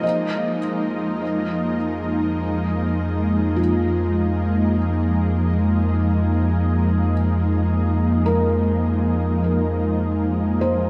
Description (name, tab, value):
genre	ambient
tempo	51 BPM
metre	3/4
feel	straight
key	F minor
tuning	A4 = 440 Hz
part	ethereal airy pad	sustained chords	0.0-10.9 s	F3 to Eb4	-24 LUFS	equal	ensemble chorus, built-in reverb
part	felt-muted upright piano	arpeggios	0.0-10.9 s	F4 to Eb5	-30 LUFS	equal	delay
part	warm sub bass	bass	0.0-10.9 s	F2	-24 LUFS	equal	none
room	wet cathedral reverb, RT60 6.2 s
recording	in a vast, echoing space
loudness	-21 LUFS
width	mono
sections	0.0-10.9 A section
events	none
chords	0.0 Fm7